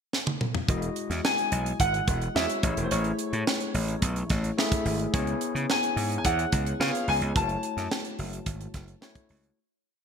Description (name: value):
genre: polished 1980s jazz-funk pop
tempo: 108 BPM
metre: 4/4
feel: straight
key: E major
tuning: A4 = 438 Hz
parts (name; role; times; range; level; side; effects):
- tight funk drum kit; drums; 0.1-9.6 s; hi-hat, kick drum, snare drum, toms; -29 LUFS; right 1 dB; gated reverb
- overdriven tine electric piano; accompaniment; 0.7-9.6 s; G#3 to E5; -32 LUFS; left 2 dB; wide subtle chorus
- gritty slap bass; bass; 0.7-9.5 s; E1 to C#3; -30 LUFS; equal; overdrive
- bright grand piano; melody; 1.2-9.0 s; C5 to A5; -29 LUFS; equal; analog chorus
room: moderate plate reverb, RT60 1.5 s, small room ambience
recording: bright 1980s-style digital production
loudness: -25 LUFS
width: side -6 dB against mid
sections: 0.0-0.7 pickup bar; 0.7-9.6 verse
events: drum fill 0.1-0.7; fade-out 7.4-9.6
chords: 0.0 N.C.; 0.7 Emaj9; 2.6 Amaj7; 5.1 C#m7; 6.8 C#7; 7.4 F#m7